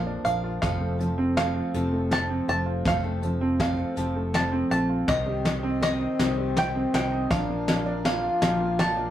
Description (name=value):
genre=indie folk with a building arrangement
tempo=54 BPM (dotted quarters)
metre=6/8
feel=straight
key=unclear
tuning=A4 = 440 Hz
part: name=bluegrass banjo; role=melody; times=0.0-9.1 s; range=Eb5 to A5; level=-29 LUFS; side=right 1 dB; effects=none
part: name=fingerpicked steel-string acoustic guitar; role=accompaniment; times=0.0-5.1 s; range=F2 to A4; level=-34 LUFS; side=equal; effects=none
part: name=picked steel-string acoustic guitar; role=accompaniment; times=0.0-9.1 s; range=F2 to Bb4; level=-33 LUFS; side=left 2 dB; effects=none
part: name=clear upright piano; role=arpeggios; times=0.0-9.1 s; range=Eb3 to F4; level=-29 LUFS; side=right 2 dB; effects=none
part: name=fingered electric bass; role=bass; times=0.0-9.1 s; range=F1 to C2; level=-31 LUFS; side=equal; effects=none
part: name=soft brush drum kit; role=drums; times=0.3-9.0 s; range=hi-hat, kick drum, snare drum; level=-28 LUFS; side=left 1 dB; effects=none
part: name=mellow trombone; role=second line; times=5.1-9.1 s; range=C4 to F4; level=-31 LUFS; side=left 4 dB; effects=none
part: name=pedal harmonium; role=sustained chords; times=5.1-9.1 s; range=F4 to C6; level=-40 LUFS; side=right 2 dB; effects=none
room=wet small room ambience, RT60 0.5 s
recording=rough rehearsal-room recording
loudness=-23 LUFS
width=side -11 dB against mid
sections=0.0-9.1 A section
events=build-up 0.0-9.1; drum fill 0.0-9.1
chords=0.0 Bb; 0.6 F; 5.1 Cm; 7.3 Bb